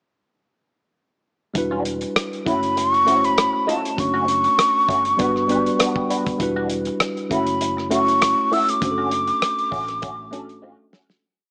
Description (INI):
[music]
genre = lush 1970s-style soul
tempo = 99 BPM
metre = 4/4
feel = swing 54% on 16ths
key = unclear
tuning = A4 = 440 Hz
[part]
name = mellow tine electric piano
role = accompaniment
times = 1.5-11.3 s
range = G3 to B5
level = -26 LUFS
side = equal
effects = none
[part]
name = electric guitar at the edge of break-up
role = riff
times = 1.5-11.1 s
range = G3 to A4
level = -30 LUFS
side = equal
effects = wah
[part]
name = vintage muted fingered electric bass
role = bass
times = 1.6-10.8 s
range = E1 to A1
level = -39 LUFS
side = equal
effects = none
[part]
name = warm soul drum kit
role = drums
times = 1.6-11.2 s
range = hi-hat, kick drum, rim click, snare drum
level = -27 LUFS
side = equal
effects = none
[part]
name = breathy concert flute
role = melody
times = 2.5-10.6 s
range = A5 to E6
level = -22 LUFS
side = equal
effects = none
[sound]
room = light reverb, small room ambience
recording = small speaker sound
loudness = -20 LUFS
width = mono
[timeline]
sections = 1.6-11.2 verse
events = tine electric piano fill 5.2-6.4; fade-out 8.8-11.2; drum fill 10.6-11.2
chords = 1.6 Em9; 2.5 F#m7; 4.0 Dmaj7/F#; 5.2 Gmaj7; 6.4 Em9; 7.3 F#m7; 8.8 Dmaj7/F#